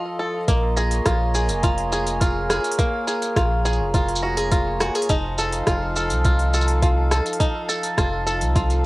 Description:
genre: folktronica.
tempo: 104 BPM.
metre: 4/4.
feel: straight.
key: Bb minor.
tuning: A4 = 440 Hz.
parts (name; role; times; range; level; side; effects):
pedal harmonium; sustained chords; 0.0-8.9 s; F3 to F5; -29 LUFS; equal; vintage 12-bit sampler grit.
bluegrass banjo; arpeggios; 0.0-8.9 s; Bb3 to Eb5; -25 LUFS; left 1 dB; tape echo.
glockenspiel with soft plastic mallets; second line; 0.5-8.8 s; Ab5 to Bb6; -28 LUFS; right 2 dB; tape echo, plate reverb.
warm sub bass; bass; 0.5-8.9 s; F1 to C2; -23 LUFS; equal; none.
electronic kick drum; drums; 0.5-8.7 s; none; -22 LUFS; equal; cassette tape.
organic electronic drum kit; drums; 0.5-8.8 s; hi-hat, rim click, shaker; -27 LUFS; equal; cassette tape.
room: light reverb.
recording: home recording on cassette.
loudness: -19 LUFS.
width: side -20 dB against mid.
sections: 0.5-8.9 A section.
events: none.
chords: 0.5 Bbm7; 5.1 F7.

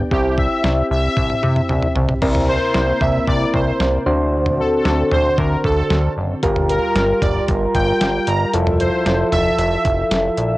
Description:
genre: synth-pop.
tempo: 114 BPM.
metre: 4/4.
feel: straight.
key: unclear.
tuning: A4 = 442 Hz.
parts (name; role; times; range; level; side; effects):
soft electric-piano-like synth keys; accompaniment; 0.0-10.6 s; C4 to C5; -21 LUFS; equal; chorus, plate reverb.
chorused synth bass; bass; 0.0-10.6 s; F1 to C3; -20 LUFS; equal; none.
analog synth brass; melody; 0.1-10.1 s; G4 to Bb5; -21 LUFS; equal; chorus, analog delay, plate reverb.
detuned 8-bit digital drum machine; drums; 0.1-10.5 s; crash cymbal, hi-hat, kick drum, snare drum, toms; -22 LUFS; equal; cassette tape.
chorused pulse-width pad; sustained chords; 2.2-10.6 s; C3 to E5; -24 LUFS; equal; plate reverb.
room: moderate booth ambience, RT60 0.2 s.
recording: home recording on cassette.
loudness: -15 LUFS.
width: side -18 dB against mid.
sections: 0.0-2.2 A section; 2.2-10.6 B section.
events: drum fill 1.2-2.2.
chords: 0.1 C; 2.2 C7; 4.1 D7; 6.4 Gm7; 8.5 Fmaj7.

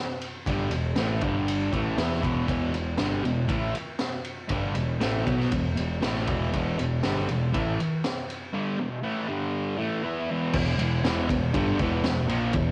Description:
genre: garage rock duo or trio.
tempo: 119 BPM.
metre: 4/4.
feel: straight.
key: unclear.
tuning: A4 = 441 Hz.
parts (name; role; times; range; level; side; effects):
raw garage drum kit; drums; 0.2-12.7 s; crash cymbal, kick drum, ride cymbal, snare drum; -33 LUFS; equal; cassette tape.
thick fuzz guitar; riff; 0.5-12.7 s; E2 to E4; -30 LUFS; equal; distortion, cassette tape.
growling picked electric bass; bass; 0.5-12.7 s; E1 to E2; -32 LUFS; equal; overdrive.
room: light reverb, small room ambience.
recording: home recording on cassette.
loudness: -27 LUFS.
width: mono.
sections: 0.0-10.5 A section; 10.5-12.7 B section.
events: none.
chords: 0.0 E5; 1.2 G5; 1.7 E5; 9.3 G5; 9.8 E5.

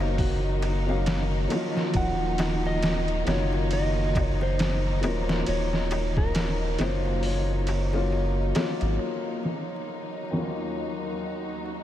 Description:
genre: trip hop.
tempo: 68 BPM.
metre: 4/4.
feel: swing 58% on 16ths.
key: Eb minor.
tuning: A4 = 441 Hz.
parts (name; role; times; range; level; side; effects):
dark upright piano; accompaniment; 0.0-11.8 s; Eb2 to F5; -31 LUFS; left 2 dB; harmonic tremolo, vintage 12-bit sampler grit, low-pass filter, tape echo.
warm studio string section; sustained chords; 0.0-11.8 s; Eb3 to Eb4; -34 LUFS; left 1 dB; none.
round analog bass; bass; 0.0-9.0 s; Eb1 to Ab1; -27 LUFS; equal; none.
darbuka; percussion; 0.0-9.0 s; none; -41 LUFS; equal; none.
mellow electric guitar; melody; 0.2-8.5 s; Gb4 to Gb5; -34 LUFS; right 1 dB; vintage 12-bit sampler grit, dub echo.
trip hop sampler-style drum kit; drums; 0.2-11.8 s; hi-hat, kick drum, ride cymbal, snare drum; -31 LUFS; right 1 dB; low-pass filter on kick, low-pass filter on cymbals, low-pass filter on snare, low-pass filter on hats, low-pass filter on room.
bowed-like drone; texture; 9.8-11.8 s; Gb3 to Gb4; -38 LUFS; left 2 dB; built-in reverb.
room: moderate huge ambient reverb, RT60 8.0 s.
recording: dreamy mix soaked in reverb, vinyl crackle.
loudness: -24 LUFS.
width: side -12 dB against mid.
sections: 0.0-9.0 A section; 9.0-11.8 B section.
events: kick drops out 7.2-9.0; filter sweep on upright piano 9.0-11.8.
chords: 0.0 Ebm7; 9.0 Ebm9.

